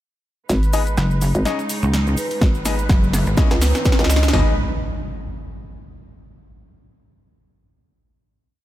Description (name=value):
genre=bass house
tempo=125 BPM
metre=4/4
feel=swing 56% on 16ths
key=G# minor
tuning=A4 = 440 Hz
part: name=muted studio string section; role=sustained chords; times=0.5-4.6 s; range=C#3 to B4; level=-29 LUFS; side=right 2 dB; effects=sidechain pumping
part: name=hollow knocking FM bass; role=bass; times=0.5-4.6 s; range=G#1 to C#2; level=-18 LUFS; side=equal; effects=overdrive, sidechain pumping
part: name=house drum kit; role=drums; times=0.5-4.4 s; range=hi-hat, snare drum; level=-25 LUFS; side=equal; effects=none
part: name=cabasa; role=percussion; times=0.5-4.3 s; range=none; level=-33 LUFS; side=right 4 dB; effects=none
part: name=riser and impact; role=sound effects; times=2.0-6.3 s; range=none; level=-29 LUFS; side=equal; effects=none
part: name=bright baby grand piano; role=stabs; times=0.7-4.5 s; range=B3 to D#5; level=-28 LUFS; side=left 6 dB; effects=vintage 12-bit sampler grit, sidechain pumping, low-pass filter, dub echo
part: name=pulsing pluck wobble bass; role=bass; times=1.0-3.4 s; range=F#1 to C#2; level=-18 LUFS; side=equal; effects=chorus, sidechain pumping
part: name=vibraphone with soft mallets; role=melody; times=2.2-4.2 s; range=B4 to D#5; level=-29 LUFS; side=equal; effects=dub echo
part: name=house drum kit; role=drums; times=2.4-4.5 s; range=kick drum, snare drum, toms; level=-18 LUFS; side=equal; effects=none
room=studio ambience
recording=none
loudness=-16 LUFS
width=side -14 dB against mid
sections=0.5-4.3 build; 4.3-6.3 final chord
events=build-up 0.5-4.3; drum fill 0.5-4.3; riser 2.0-4.3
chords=0.5 G#m; 1.5 C#sus2; 2.4 G#m; 3.4 C#madd9; 4.3 G#m